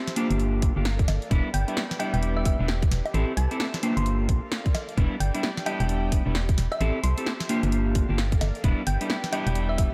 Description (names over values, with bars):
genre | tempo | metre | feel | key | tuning
UK garage, two-step garage | 131 BPM | 4/4 | swing 61% on 16ths | E minor | A4 = 436 Hz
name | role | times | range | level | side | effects
thumb-piano-like synth pluck | melody | 0.0-9.9 s | E5 to C6 | -38 LUFS | equal | chorus, diffuse ambient delay
airy breathy pad | sustained chords | 0.0-9.9 s | G4 to G5 | -41 LUFS | equal | chorus, sidechain pumping
punchy analog drum machine | drums | 0.1-9.9 s | bongos, hi-hat, snare drum | -34 LUFS | equal | none
clean electric guitar | stabs | 0.2-9.9 s | G3 to A4 | -32 LUFS | equal | analog chorus, diffuse ambient delay
organ-like FM bass | bass | 0.3-9.9 s | E1 to C2 | -28 LUFS | equal | none
electronic kick drum | drums | 0.6-9.9 s | none | -26 LUFS | equal | none
room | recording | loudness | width
light reverb | none | -25 LUFS | mono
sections
0.0-9.9 A section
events
none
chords
0.4 Gm7; 1.3 Em7; 3.1 Am7; 4.1 Gm7; 5.0 Em7; 6.8 Am7; 7.7 Gm7; 8.6 Em7